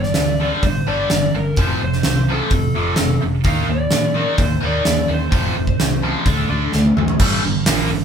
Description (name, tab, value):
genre	hard rock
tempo	128 BPM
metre	4/4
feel	straight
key	G minor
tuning	A4 = 436 Hz
part	lead guitar through a small cranked amp	melody	0.0-6.0 s	A4 to F5	-23 LUFS	left 2 dB	overdrive
part	biting overdriven guitar	riff	0.0-8.0 s	F2 to Eb4	-22 LUFS	left 6 dB	phaser
part	tight distorted guitar	riff	0.0-8.0 s	F2 to Eb4	-23 LUFS	right 6 dB	distortion
part	hollow-body short-scale fingered electric bass	bass	0.0-8.0 s	F1 to Bb2	-23 LUFS	equal	none
part	huge arena drum kit	drums	0.0-7.8 s	crash cymbal, hi-hat, kick drum, snare drum, toms	-19 LUFS	right 1 dB	none
room	moderate studio reverb, RT60 0.5 s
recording	band playing live in one room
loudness	-15 LUFS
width	side -7 dB against mid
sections	0.0-7.2 A section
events	drum fill 6.7-7.2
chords	0.0 G5; 1.6 F; 3.5 Eb5; 5.3 F5; 6.3 D5; 7.2 Gm